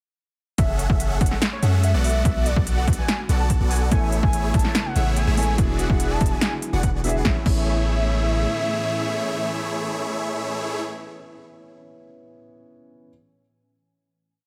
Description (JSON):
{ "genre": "future bass", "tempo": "144 BPM", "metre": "4/4", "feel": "half-time", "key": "A major", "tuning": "A4 = 440 Hz", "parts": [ { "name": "warm velvety synth lead", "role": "melody", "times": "0.6-10.8 s", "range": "C#5 to A5", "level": "-32 LUFS", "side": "equal", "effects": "chorus, sidechain pumping, digital delay" }, { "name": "ethereal airy pad", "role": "sustained chords", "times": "1.6-10.6 s", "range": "A2 to G#5", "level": "-38 LUFS", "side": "equal", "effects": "none" }, { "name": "supersaw chords", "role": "riff", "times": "0.6-10.8 s", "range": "A3 to F#5", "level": "-30 LUFS", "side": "equal", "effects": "phaser, sidechain pumping" }, { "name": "long sustained 808-style bass", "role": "bass", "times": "0.6-8.5 s", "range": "E1 to F#2", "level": "-24 LUFS", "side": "equal", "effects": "sidechain pumping" }, { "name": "big-room dance drum kit", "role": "drums", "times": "0.6-7.6 s", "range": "crash cymbal, hi-hat, snare drum", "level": "-29 LUFS", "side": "equal", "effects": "overdrive" }, { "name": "electronic kick drum", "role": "drums", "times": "0.6-7.6 s", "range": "none", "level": "-24 LUFS", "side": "equal", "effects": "overdrive" }, { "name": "dark concert grand piano", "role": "accompaniment", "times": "3.9-13.1 s", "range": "F#3 to A4", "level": "-34 LUFS", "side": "equal", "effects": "sidechain pumping" } ], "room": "digital ambience", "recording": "none", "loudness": "-22 LUFS", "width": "mono", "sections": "0.6-7.2 drop; 7.2-10.6 final chord", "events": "drop 0.6-7.2", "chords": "0.6 F#m9; 2.0 Bm7; 3.9 Amaj7; 5.6 E9; 7.2 Amaj7" }